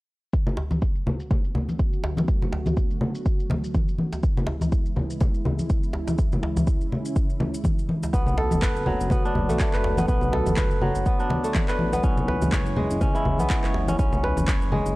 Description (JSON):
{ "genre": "afro house", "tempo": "123 BPM", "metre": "4/4", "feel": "swing 57% on 16ths", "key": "B dorian", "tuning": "A4 = 440 Hz", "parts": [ { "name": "warm analog pad", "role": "sustained chords", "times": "0.3-15.0 s", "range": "C#3 to F#4", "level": "-33 LUFS", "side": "equal", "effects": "chorus, sidechain pumping" }, { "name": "electronic kick drum", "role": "drums", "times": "0.3-14.6 s", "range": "none", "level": "-24 LUFS", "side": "equal", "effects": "small room ambience" }, { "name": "electronic shaker and handclaps", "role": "drums", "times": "0.3-14.9 s", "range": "none", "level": "-34 LUFS", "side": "equal", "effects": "overdrive, low-pass filter on perc, small room ambience, low-pass filter on snare" }, { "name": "congas", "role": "percussion", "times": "0.5-14.8 s", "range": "none", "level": "-27 LUFS", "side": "left 1 dB", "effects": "none" }, { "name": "djembe", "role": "percussion", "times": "0.6-14.8 s", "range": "none", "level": "-30 LUFS", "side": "equal", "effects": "none" }, { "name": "kora", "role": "arpeggios", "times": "8.1-15.0 s", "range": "F#3 to C#5", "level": "-26 LUFS", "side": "equal", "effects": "sidechain pumping, tape echo" }, { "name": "smooth synth bass", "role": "bass", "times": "8.1-14.9 s", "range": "F#1 to B1", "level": "-28 LUFS", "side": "equal", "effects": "sidechain pumping" } ], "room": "studio ambience", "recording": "dry, gritty hardware recording, transformer saturation, cassette tape", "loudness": "-21 LUFS", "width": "side -20 dB against mid", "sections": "0.3-15.0 A section", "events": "none", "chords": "0.3 Bm7; 4.2 C#m7; 8.1 Bm7; 12.0 C#m7", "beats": "| 0.33 0.82 1.31 1.79 | 2.28 2.77 3.26 3.75 | 4.23 4.72 5.21 5.70 | 6.18 6.67 7.16 7.65 | 8.13 8.62 9.11 9.60 | 10.09 10.57 11.06 11.55 | 12.04 12.53 13.01 13.50 | 13.99 14.48" }